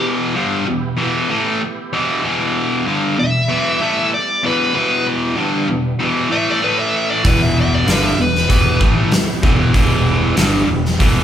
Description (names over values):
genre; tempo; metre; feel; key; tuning
blues rock power trio and southern rock; 96 BPM; 4/4; straight; E minor; A4 = 442 Hz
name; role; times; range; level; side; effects
dark smooth lead guitar; melody; 0.0-8.8 s; B4 to E5; -19 LUFS; left 1 dB; overdrive
overdriven tonewheel organ; sustained chords; 0.0-11.2 s; E3 to A4; -30 LUFS; right 3 dB; slow rotary speaker, chorus vibrato
overdriven electric guitar; riff; 0.0-11.2 s; E2 to A3; -17 LUFS; equal; none
fuzz fingered electric bass; bass; 7.2-11.2 s; E1 to A1; -19 LUFS; equal; overdrive
oversized low-tuned drum kit; drums; 7.2-11.2 s; hi-hat, kick drum, snare drum; -16 LUFS; equal; none
room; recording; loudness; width
moderate large studio reverb, RT60 1.3 s; band playing live in one room; -14 LUFS; side -10 dB against mid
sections
0.0-11.2 A section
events
none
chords
0.0 Em; 6.6 A5; 7.2 Em